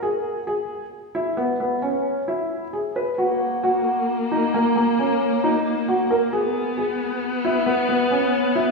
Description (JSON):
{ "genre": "contemporary instrumental, chamber music in an uneven meter", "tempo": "134 BPM", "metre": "7/4", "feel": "straight", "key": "C# dorian", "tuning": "A4 = 441 Hz", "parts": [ { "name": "felt-muted upright piano", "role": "arpeggios", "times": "0.0-8.7 s", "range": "A#3 to B4", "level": "-21 LUFS", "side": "right 1 dB", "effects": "none" }, { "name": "warm viola", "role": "second line", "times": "3.2-8.7 s", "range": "A#3 to B3", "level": "-23 LUFS", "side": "left 3 dB", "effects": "none" } ], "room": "wet scoring stage reverb, RT60 2.1 s", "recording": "heard from further back in the room", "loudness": "-20 LUFS", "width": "side -3 dB against mid", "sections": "0.0-8.7 A section", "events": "none", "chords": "0.0 C#m7; 3.2 D#m7; 6.3 C#m7" }